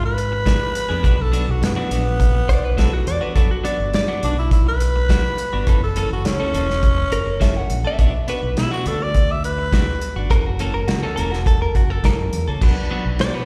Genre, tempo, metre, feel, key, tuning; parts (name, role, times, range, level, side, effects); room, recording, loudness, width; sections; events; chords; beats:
straight-eighth soul blues; 104 BPM; 4/4; straight; B harmonic minor; A4 = 440 Hz
growling tenor saxophone; melody; 0.0-10.3 s; B3 to E5; -26 LUFS; equal; slapback echo
clean electric guitar; stabs; 0.0-13.5 s; E3 to A4; -31 LUFS; equal; subtle chorus, slapback echo
fingered electric bass; bass; 0.0-13.3 s; E1 to B2; -24 LUFS; equal
warm soul drum kit; drums; 0.2-13.3 s; crash cymbal, hi-hat, kick drum, ride cymbal, snare drum; -22 LUFS; equal
direct-recorded clean electric guitar; second line; 2.5-13.5 s; F#4 to F#5; -27 LUFS; equal; slapback echo
mellow horn section; sustained chords; 12.6-13.2 s; D4 to B4; -33 LUFS; equal
light reverb; live gig heard through the venue's PA, recital hall reverb; -19 LUFS; mono
0.0-12.6 A section
0.0 Fdim7; 1.0 Bm; 3.4 Gmaj7; 5.7 F#7#9; 8.0 Bm; 10.3 F#7#9; 12.6 Bm
0.47 | 1.05 1.62 2.20 2.78 | 3.36 3.94 4.52 5.09 | 5.67 6.25 6.83 7.41 | 7.99 8.57 9.15 9.72 | 10.30 10.88 11.46 12.04 | 12.62 13.20